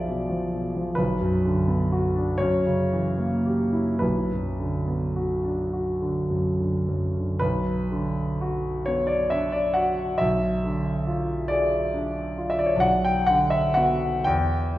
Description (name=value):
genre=classical, romantic nocturne for solo piano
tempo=33-47 BPM (dotted quarters)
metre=12/8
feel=rubato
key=B minor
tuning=A4 = 439 Hz
part: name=warm grand piano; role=solo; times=0.0-14.8 s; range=B1 to G5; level=-22 LUFS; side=equal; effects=none
room=wet recital hall reverb, RT60 1.7 s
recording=heard from further back in the room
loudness=-22 LUFS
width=side -15 dB against mid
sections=0.0-7.4 A section; 7.4-14.8 A section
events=none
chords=0.0 Bdim7; 1.0 Bm; 2.4 F#7b9; 4.0 Bm; 10.2 Bdim7; 12.8 Bm; 14.3 C#dim/E (rootless)